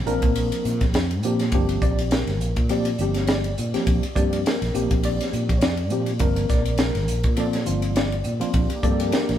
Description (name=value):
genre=electric jazz fusion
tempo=103 BPM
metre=4/4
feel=swing 56% on 16ths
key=Bb major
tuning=A4 = 440 Hz
part: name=fretless electric bass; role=bass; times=0.0-9.4 s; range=G1 to Bb2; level=-25 LUFS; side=equal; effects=none
part: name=tine electric piano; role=accompaniment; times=0.1-9.4 s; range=F3 to D5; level=-25 LUFS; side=left 1 dB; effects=overdrive, fast stereo tremolo
part: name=crisp fusion drum kit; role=drums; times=0.1-9.4 s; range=hi-hat, kick drum, ride cymbal, snare drum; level=-24 LUFS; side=equal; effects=none
part: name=analog string pad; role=sustained chords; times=8.5-9.4 s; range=Bb3 to G4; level=-27 LUFS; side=left 1 dB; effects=ensemble chorus
room=moderate stone room reverb, RT60 1.1 s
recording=band playing live in one room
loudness=-20 LUFS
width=side -11 dB against mid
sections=0.0-9.4 A section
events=none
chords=0.0 Bb6